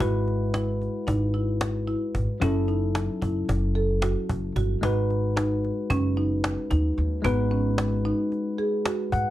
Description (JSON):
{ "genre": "progressive instrumental, band music in an uneven meter", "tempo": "224 BPM (eighths)", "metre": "9/8", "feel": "straight", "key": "unclear", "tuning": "A4 = 440 Hz", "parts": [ { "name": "tine electric piano", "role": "accompaniment", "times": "0.0-9.3 s", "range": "F#3 to F#5", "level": "-29 LUFS", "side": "left 3 dB", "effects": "phaser" }, { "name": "marimba with soft mallets", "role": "arpeggios", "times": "0.0-9.1 s", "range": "B3 to A4", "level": "-29 LUFS", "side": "right 3 dB", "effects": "none" }, { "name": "upright bass", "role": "bass", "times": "0.0-9.2 s", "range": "F#1 to G#2", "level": "-26 LUFS", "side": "equal", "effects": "none" }, { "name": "cajon", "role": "drums", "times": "0.0-9.2 s", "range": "none", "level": "-30 LUFS", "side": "equal", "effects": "none" } ], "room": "light reverb", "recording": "cassette tape, faint mains hum", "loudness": "-23 LUFS", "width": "side -14 dB against mid", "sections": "0.0-4.8 A section; 4.8-9.3 B section", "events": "tine electric piano fill 8.9-9.3", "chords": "0.0 Eadd9/G#; 2.4 F#m7; 4.8 G#m7", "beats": "| 0.00 0.27 0.54 0.81 1.08 1.34 1.61 1.88 2.15 | 2.42 2.69 2.95 3.22 3.49 3.76 4.03 4.30 4.56 | 4.83 5.10 5.37 5.64 5.90 6.17 6.44 6.71 6.98 | 7.24 7.51 7.78 8.05 8.32 8.58 8.85 9.12" }